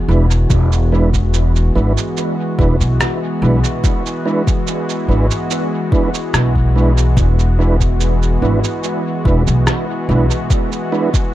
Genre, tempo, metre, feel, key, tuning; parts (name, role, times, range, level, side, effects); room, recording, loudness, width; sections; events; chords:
ambient dub; 72 BPM; 4/4; straight; E mixolydian; A4 = 440 Hz
warm analog pad; sustained chords; 0.0-11.3 s; E3 to F#4; -21 LUFS; equal; chorus
upright bass; bass; 0.0-10.3 s; E1 to B1; -14 LUFS; equal
mellow tonewheel organ; stabs; 0.1-11.1 s; G#3 to B4; -21 LUFS; right 3 dB; chorus vibrato, vintage 12-bit sampler grit, dub echo
electronic cabasa and rim click; drums; 0.3-11.3 s; -23 LUFS; right 2 dB; dub echo
electronic kick drum; drums; 0.5-11.3 s; -16 LUFS; equal; overdrive
little or no reverb; dark, warm production; -13 LUFS; side -14 dB against mid
0.0-11.3 A section
0.0 E7